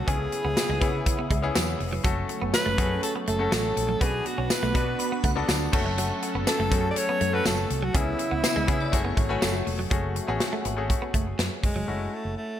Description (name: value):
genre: 1980s-style pop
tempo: 122 BPM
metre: 4/4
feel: straight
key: F# minor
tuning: A4 = 439 Hz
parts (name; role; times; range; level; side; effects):
- breathy alto saxophone; melody; 0.0-12.6 s; G#3 to D5; -29 LUFS; equal; tape echo
- bright grand piano; accompaniment; 0.0-12.6 s; B2 to G#5; -31 LUFS; left 5 dB; none
- lush unison pad; sustained chords; 0.0-11.9 s; C#3 to A4; -33 LUFS; right 1 dB; chorus, phaser
- direct-recorded clean electric guitar; riff; 0.0-11.8 s; F#3 to C#4; -35 LUFS; right 4 dB; lush chorus, tape echo
- mellow fretless electric bass; bass; 0.1-12.3 s; E#1 to C#3; -30 LUFS; equal; none
- modern studio drum kit; drums; 0.1-11.8 s; crash cymbal, hi-hat, kick drum, snare drum, tambourine; -27 LUFS; equal; gated reverb
- shimmering bell with halo; second line; 5.0-9.9 s; A4 to B5; -36 LUFS; equal; ensemble chorus, phaser, tape echo
room: light reverb, small room ambience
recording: none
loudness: -23 LUFS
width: side -10 dB against mid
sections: 0.0-9.9 A section; 9.9-11.9 B section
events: none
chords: 0.1 C#m7; 2.0 F#m; 4.0 Bm; 5.7 F#m; 7.9 C#m7; 8.9 F#madd9; 11.9 F#m7